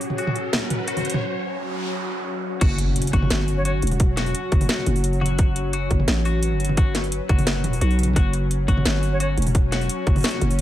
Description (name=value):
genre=half-time drum and bass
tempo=173 BPM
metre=4/4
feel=half-time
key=unclear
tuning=A4 = 440 Hz
part: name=bowed-like drone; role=sustained chords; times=0.0-10.6 s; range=F#3 to B4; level=-29 LUFS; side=left 2 dB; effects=built-in reverb, sidechain pumping
part: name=drum and bass drum kit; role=drums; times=0.0-10.6 s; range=crash cymbal, hi-hat, snare drum, toms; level=-25 LUFS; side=equal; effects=none
part: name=riser, noise sweep and impact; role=sound effects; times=0.0-4.0 s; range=none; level=-31 LUFS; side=right 1 dB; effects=none
part: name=twelve-string electric guitar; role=arpeggios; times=0.2-10.4 s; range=F#4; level=-32 LUFS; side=left 5 dB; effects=dub echo
part: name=growling 808-style bass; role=bass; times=2.6-10.6 s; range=E1 to B1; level=-22 LUFS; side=equal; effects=none
part: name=electronic kick drum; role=drums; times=2.6-10.1 s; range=none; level=-18 LUFS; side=equal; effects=overdrive
part: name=bright reedy jazz flute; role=melody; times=3.6-3.7, 9.1-9.3 s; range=C#5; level=-31 LUFS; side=right 1 dB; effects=dub echo
room=light reverb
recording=none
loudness=-19 LUFS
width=side -13 dB against mid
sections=0.0-2.6 A section; 2.6-10.6 B section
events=build-up 0.0-2.6; riser 0.0-1.2; break 1.2-2.6; noise sweep 1.2-2.6; drop 2.6-10.6; impact 2.6-4.0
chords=0.0 F#5